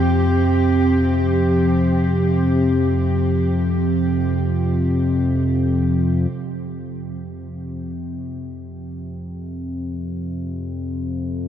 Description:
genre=dark ambient drone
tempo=free time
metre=none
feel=none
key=unclear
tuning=A4 = 441 Hz
part: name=dark chamber cello section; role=sustained chords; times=0.0-6.3 s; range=F3 to G4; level=-25 LUFS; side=right 1 dB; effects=shimmer reverb
part: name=analog drone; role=drone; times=0.0-11.5 s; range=F2 to C3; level=-19 LUFS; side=equal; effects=chorus
room=wet huge ambient reverb, RT60 8.2 s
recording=none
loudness=-17 LUFS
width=side -9 dB against mid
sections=0.0-6.3 A section; 6.3-11.5 B section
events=fade-out on cello section 0.0-6.3; filter sweep on synth drone 0.0-6.3; fade-in on synth drone 6.3-11.5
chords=0.0 F5

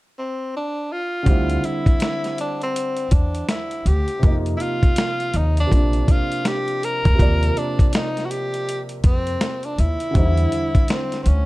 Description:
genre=hip hop, jazz-hop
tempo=81 BPM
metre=4/4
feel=swing 62% on 16ths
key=D minor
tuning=A4 = 440 Hz
part: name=breathy tenor saxophone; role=melody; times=0.2-11.5 s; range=C4 to Bb4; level=-25 LUFS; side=equal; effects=slapback echo
part: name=dark baby grand piano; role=accompaniment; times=1.2-11.5 s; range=C3 to D5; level=-27 LUFS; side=right 1 dB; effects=none
part: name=upright bass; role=bass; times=1.3-11.5 s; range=Bb1 to F2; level=-19 LUFS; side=equal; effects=none
part: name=dusty soul sampler-style drum kit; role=drums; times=1.3-11.5 s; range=hi-hat, kick drum, snare drum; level=-18 LUFS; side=equal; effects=none
room=small room ambience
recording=none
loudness=-18 LUFS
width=side -19 dB against mid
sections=0.0-1.3 A section; 1.3-11.5 B section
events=none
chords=0.0 N.C.; 1.3 Dsus2; 4.2 F5; 5.7 Bbadd9; 7.2 Ebsus2; 10.2 D9sus4

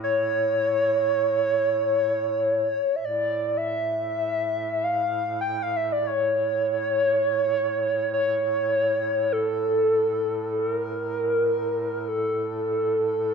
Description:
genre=caucasian folk, Caucasian lament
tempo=free time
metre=none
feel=none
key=unclear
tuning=A4 = 441 Hz
part: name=pure sine lead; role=melody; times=0.0-13.3 s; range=A4 to G5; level=-22 LUFS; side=equal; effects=chorus
part: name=clear duduk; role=drone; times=0.0-13.3 s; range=A2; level=-34 LUFS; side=right 3 dB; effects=none
room=moderate scoring stage reverb, RT60 1.7 s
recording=dark, warm production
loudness=-22 LUFS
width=side -6 dB against mid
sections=0.0-13.3 A section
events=slowing down 10.2-13.3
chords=none

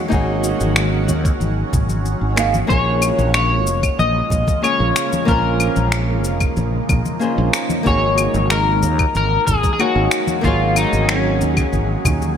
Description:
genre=sunset chillout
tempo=93 BPM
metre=4/4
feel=straight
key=unclear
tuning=A4 = 438 Hz
part: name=nylon-string guitar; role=accompaniment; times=0.0-12.4 s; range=Gb3 to F5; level=-23 LUFS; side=moving between left 2 dB and right 4 dB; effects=auto-pan, digital delay
part: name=shimmering ambient pad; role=sustained chords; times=0.0-12.4 s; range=Db3 to Ab4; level=-25 LUFS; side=equal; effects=chorus, built-in reverb, phaser
part: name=fretless electric bass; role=bass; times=0.1-12.4 s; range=F1 to Eb2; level=-19 LUFS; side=equal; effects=lush chorus
part: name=electronic kick drum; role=drums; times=0.1-12.2 s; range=none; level=-20 LUFS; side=right 1 dB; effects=none
part: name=electronic shaker, finger snaps and claves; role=drums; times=0.1-12.3 s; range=none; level=-23 LUFS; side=left 2 dB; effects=overdrive, gated reverb
part: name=congas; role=percussion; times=0.6-12.3 s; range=none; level=-27 LUFS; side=left 2 dB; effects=none
part: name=electric guitar at the edge of break-up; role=melody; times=2.7-12.4 s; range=Db4 to Eb5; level=-20 LUFS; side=left 3 dB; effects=analog chorus, digital delay
room=moderate plate reverb, RT60 3.3 s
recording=bright 1980s-style digital production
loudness=-15 LUFS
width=side -8 dB against mid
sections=0.0-12.4 A section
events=none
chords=0.0 Ab7sus4; 2.7 Bbm7; 7.9 Ab7sus4

